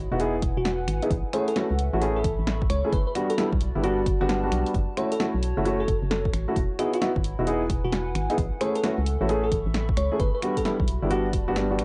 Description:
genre	UK garage, two-step garage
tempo	132 BPM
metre	4/4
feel	swing 64% on 16ths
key	unclear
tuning	A4 = 440 Hz
part	organ-like FM bass	bass	0.0-11.8 s	D1 to C#2	-30 LUFS	equal	none
part	warbly tape-like pad	texture	0.0-11.8 s	E4 to C#6	-38 LUFS	equal	chorus, built-in reverb, sidechain pumping, cassette tape
part	dark grand piano	stabs	0.1-11.8 s	G3 to G#4	-29 LUFS	equal	cassette tape
part	punchy analog drum machine	drums	0.2-11.8 s	finger snaps, hi-hat, snare drum	-34 LUFS	equal	none
part	electronic kick drum	drums	0.4-11.5 s	none	-30 LUFS	equal	none
part	bell-like FM electric piano	melody	0.6-11.8 s	F#4 to C#5	-33 LUFS	equal	chorus, cassette tape, tape echo
room	light reverb, digital ambience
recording	home recording on cassette, nothing above 11.0 kHz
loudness	-25 LUFS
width	mono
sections	0.0-11.8 A section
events	none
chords	0.0 Emaj7; 1.1 Amaj7; 2.9 Gmaj7; 4.7 F#m7; 6.6 Emaj7; 8.4 Amaj7; 10.2 Gmaj7

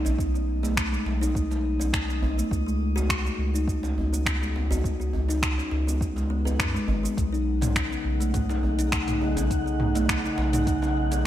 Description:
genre	organic downtempo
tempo	103 BPM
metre	4/4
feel	straight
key	B mixolydian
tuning	A4 = 441 Hz
part	kalimba	arpeggios	0.0-11.2 s	G#3 to B4	-29 LUFS	left 2 dB	digital delay, shimmer reverb
part	round analog bass	bass	0.0-11.3 s	G#1 to F#2	-27 LUFS	equal	sidechain pumping
part	djembe	percussion	0.0-11.2 s	none	-35 LUFS	right 1 dB	none
part	deep house drum kit	drums	0.1-11.2 s	finger snaps, hi-hat, shaker, toms	-30 LUFS	right 1 dB	overdrive, gated reverb
part	electronic kick drum	drums	0.2-10.8 s	none	-30 LUFS	equal	overdrive
part	warm analog pad	sustained chords	7.9-11.3 s	C#3 to G#4	-32 LUFS	right 2 dB	chorus, sidechain pumping, shimmer reverb
part	wind-like tuned noise texture	texture	7.6-11.3 s	F#5	-36 LUFS	left 1 dB	built-in reverb, wide subtle chorus, shimmer reverb
room	light reverb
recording	bright 1980s-style digital production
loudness	-23 LUFS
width	side -12 dB against mid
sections	0.0-11.3 A section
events	none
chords	0.0 B; 2.5 C#sus4; 7.2 B13

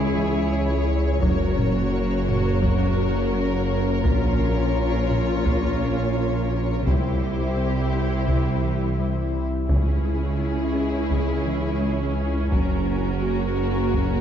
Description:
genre	cinematic, hybrid orchestral and electronic film score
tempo	85 BPM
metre	4/4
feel	straight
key	C# dorian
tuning	A4 = 440 Hz
part	warm symphonic violin section	melody	0.0-14.2 s	G#4 to C#5	-33 LUFS	left 6 dB	none
part	warm symphonic violin section	second line	0.0-14.2 s	E4 to A#4	-34 LUFS	left 2 dB	none
part	warm symphonic viola section	accompaniment	0.0-14.2 s	C#4 to F#4	-33 LUFS	equal	none
part	mellow French horn section	sustained chords	0.0-14.2 s	G3 to F#4	-30 LUFS	left 5 dB	none
part	warbly tape-like pad	sustained chords	0.0-14.2 s	G3 to E5	-30 LUFS	equal	chorus, built-in reverb, phaser
part	mellow tuba	bass	0.0-14.2 s	F#1 to C#2	-30 LUFS	right 4 dB	none
part	rich symphonic cello section	bass	0.0-14.2 s	C#2 to C#3	-31 LUFS	right 3 dB	none
part	rich symphonic double bass section	bass	0.0-14.2 s	F#1 to C#2	-30 LUFS	right 3 dB	none
part	sub bass with octave	bass	0.0-14.2 s	F#1 to C#2	-28 LUFS	equal	none
part	impact	sound effects	0.0-1.2 s	none	barely audible	none	none
part	thumb-piano-like synth pluck	arpeggios	0.2-14.1 s	C3 to A#4	-33 LUFS	left 5 dB	none
part	solo taiko drums	drums	1.2-14.2 s	none	-26 LUFS	equal	none
room	moderate scoring stage reverb, RT60 1.6 s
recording	dark, warm production, nothing above 7.5 kHz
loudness	-20 LUFS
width	side -9 dB against mid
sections	0.0-14.2 A section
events	impact 0.0-1.2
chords	0.0 C#m; 1.2 F#; 4.0 A#m; 6.9 C; 9.7 C#m; 12.5 F#

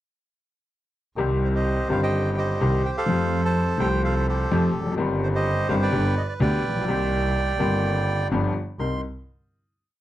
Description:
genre	tango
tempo	126 BPM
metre	4/4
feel	rubato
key	C dorian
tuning	A4 = 440 Hz
part	clear upright piano	accompaniment	1.2-9.0 s	G1 to Bb4	-24 LUFS	left 2 dB	none
part	bright double bass	bass	1.2-9.0 s	F1 to F2	-26 LUFS	right 1 dB	none
part	bandoneon	melody	1.4-9.0 s	G4 to C6	-26 LUFS	right 3 dB	none
room	light reverb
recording	dry, close 1970s-style studio recording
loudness	-21 LUFS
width	side -14 dB against mid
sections	1.2-8.8 A section; 8.8-10.0 final chord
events	none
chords	1.2 Cm; 3.1 Fadd9; 5.0 Cm/G; 5.9 G; 6.9 Cm7; 8.3 G7; 8.8 Cm7

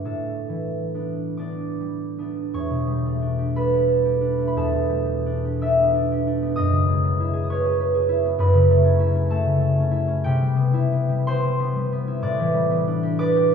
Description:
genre	classical, solo harp piece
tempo	42-68 BPM (dotted quarters)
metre	6/8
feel	rubato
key	E dorian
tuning	A4 = 440 Hz
part	concert harp	solo	0.0-13.5 s	E2 to E6	-19 LUFS	equal	none
room	wet scoring stage reverb, RT60 1.8 s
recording	recorded in a church or concert hall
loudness	-19 LUFS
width	side -7 dB against mid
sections	0.0-2.6 A section; 2.6-13.5 B section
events	none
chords	0.0 A9sus4; 2.6 Em7; 4.6 G69/E; 6.6 F#m11; 8.4 A69/F#; 10.2 Cmaj7; 12.2 Am11

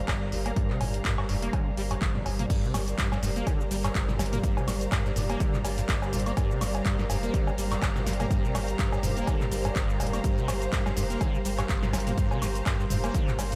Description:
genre	acid house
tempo	124 BPM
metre	4/4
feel	swing 56% on 16ths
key	G minor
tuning	A4 = 440 Hz
part	warm analog pad	sustained chords	0.0-13.6 s	G3 to D5	-37 LUFS	equal	chorus, sidechain pumping
part	saturated sub bass	bass	0.0-13.6 s	F1 to G1	-35 LUFS	equal	sidechain pumping
part	dark studio string section	texture	0.0-13.6 s	G4 to Bb5	-41 LUFS	equal	sidechain pumping
part	acid bass, saw	riff	0.1-13.6 s	G1 to Bb3	-35 LUFS	equal	overdrive, ensemble chorus, sidechain pumping, delay
part	electronic kick drum	drums	0.1-13.3 s	none	-31 LUFS	equal	none
part	punchy analog drum machine	drums	0.1-13.6 s	cowbell, crash cymbal, handclaps, hi-hat, shaker, snare drum, toms, woodblock	-35 LUFS	equal	none
room	moderate lush hall reverb, RT60 1.8 s, digital ambience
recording	dreamy mix soaked in reverb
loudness	-28 LUFS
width	mono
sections	0.0-2.5 A section; 2.5-13.6 B section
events	filter sweep on acid bass 0.0-2.5; drum fill 2.0-2.5; drop 2.5-13.6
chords	0.0 Gm

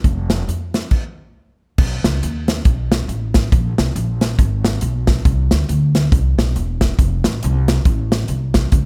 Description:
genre	uptempo gospel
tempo	138 BPM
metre	4/4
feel	swing 60% on 8ths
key	unclear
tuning	A4 = 438 Hz
part	upright bass	bass	0.0-8.9 s	E1 to F2	-21 LUFS	equal	none
part	modern studio drum kit	drums	0.0-8.8 s	crash cymbal, hi-hat, kick drum, snare drum	-19 LUFS	equal	none
room	little or no reverb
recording	none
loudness	-18 LUFS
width	mono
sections	0.0-1.8 A section; 1.8-8.9 B section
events	stop 0.9-1.8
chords	none

